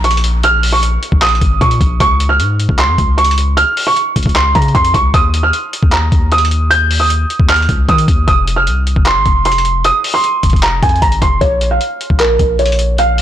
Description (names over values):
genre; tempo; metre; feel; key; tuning
hip hop, trap; 153 BPM; 4/4; half-time; unclear; A4 = 440 Hz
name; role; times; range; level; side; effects
felt-muted upright piano; melody; 0.0-13.2 s; Bb4 to G6; -13 LUFS; right 2 dB; low-pass filter
long sustained 808-style bass; bass; 0.0-13.2 s; F1 to Eb3; -15 LUFS; left 1 dB; none
lo-fi sampler-style drum kit; drums; 0.0-13.2 s; handclaps, hi-hat, kick drum; -15 LUFS; left 1 dB; none
downlifter; sound effects; 0.0-2.0 s; none; -34 LUFS; left 1 dB; none
room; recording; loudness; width
digital ambience; blown-out, overdriven recording, overdrive; -10 LUFS; side -11 dB against mid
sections
0.0-11.4 A section; 11.4-13.2 B section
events
none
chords
0.0 Bbm; 2.0 Db; 5.1 Ebsus2; 8.3 F5; 11.4 Bbm